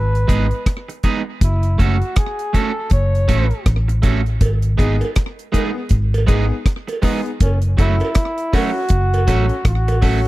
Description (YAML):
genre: roots reggae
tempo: 80 BPM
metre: 4/4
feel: swing 61% on 16ths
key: F# dorian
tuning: A4 = 440 Hz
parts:
  - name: warm flugelhorn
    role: melody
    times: 0.0-10.3 s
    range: C#4 to C#5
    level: -24 LUFS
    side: equal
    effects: tape echo
  - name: vintage muted fingered electric bass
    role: bass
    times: 0.0-10.3 s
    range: F#1 to A1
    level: -17 LUFS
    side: equal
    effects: none
  - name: deep reggae drum kit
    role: drums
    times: 0.2-10.3 s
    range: hi-hat, kick drum, rim click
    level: -17 LUFS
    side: equal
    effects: none
  - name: electric guitar at the edge of break-up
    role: accompaniment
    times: 0.3-10.2 s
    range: F#3 to A4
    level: -24 LUFS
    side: right 6 dB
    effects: tape echo
  - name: cowbell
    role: percussion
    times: 4.4-10.0 s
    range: none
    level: -28 LUFS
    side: right 4 dB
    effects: none
  - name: bright grand piano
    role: stabs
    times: 4.8-10.3 s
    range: B3 to A4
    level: -26 LUFS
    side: left 5 dB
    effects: none
room: little or no reverb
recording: dry, close 1970s-style studio recording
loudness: -15 LUFS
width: side -18 dB against mid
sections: 0.0-10.3 A section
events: none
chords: 0.0 G#m; 1.4 F#m; 4.4 G#m; 7.4 F#m